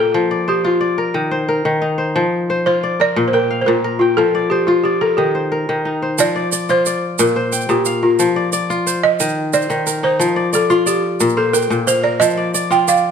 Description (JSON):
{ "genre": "west african traditional, West African string and xylophone music", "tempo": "119 BPM (dotted quarters)", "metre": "12/8", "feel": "straight", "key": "unclear", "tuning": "A4 = 440 Hz", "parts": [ { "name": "balafon", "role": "melody", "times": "0.0-13.1 s", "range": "F4 to G5", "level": "-16 LUFS", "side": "right 1 dB", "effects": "none" }, { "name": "kora", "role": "arpeggios", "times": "0.0-13.1 s", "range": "Bb2 to G5", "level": "-17 LUFS", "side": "left 2 dB", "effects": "none" }, { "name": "tube shaker", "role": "percussion", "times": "6.2-13.0 s", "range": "none", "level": "-22 LUFS", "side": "right 10 dB", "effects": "none" } ], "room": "moderate recital hall reverb, RT60 1.4 s", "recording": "none", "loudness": "-14 LUFS", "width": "side -7 dB against mid", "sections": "0.0-6.2 A section; 6.2-13.1 B section", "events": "balafon solo 6.2-13.1", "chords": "0.1 F; 1.1 Eb5; 2.2 F5; 3.2 Bb; 4.2 F; 5.2 Eb; 6.2 F5; 7.2 Bb; 8.2 F5; 9.2 Eb5; 10.2 F5; 11.2 Bb; 12.2 F13sus4" }